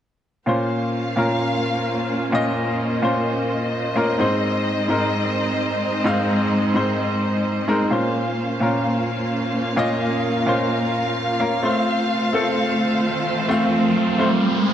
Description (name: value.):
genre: EDM.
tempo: 129 BPM.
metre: 4/4.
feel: straight.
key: Bb minor.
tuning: A4 = 440 Hz.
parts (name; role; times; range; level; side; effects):
clear baby grand piano; accompaniment; 0.5-14.7 s; Ab2 to F5; -20 LUFS; equal; tape echo.
dark chamber string section; sustained chords; 0.5-14.7 s; Ab3 to F5; -23 LUFS; right 1 dB; none.
riser; sound effects; 13.0-14.7 s; none; -24 LUFS; right 1 dB; none.
room: moderate lush hall reverb, RT60 2.5 s.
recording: dark, warm production.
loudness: -18 LUFS.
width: side -10 dB against mid.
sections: 0.5-14.7 A section.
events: riser 13.0-14.7.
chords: 0.5 Bbmadd9; 4.2 Ab; 7.9 Bbmadd9; 11.6 F.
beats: | 0.47 0.94 1.40 1.87 | 2.33 2.80 3.27 3.73 | 4.20 4.66 5.12 5.59 | 6.06 6.52 6.99 7.45 | 7.92 8.38 8.85 9.31 | 9.78 10.24 10.71 11.17 | 11.64 12.10 12.57 13.03 | 13.50 13.96 14.43.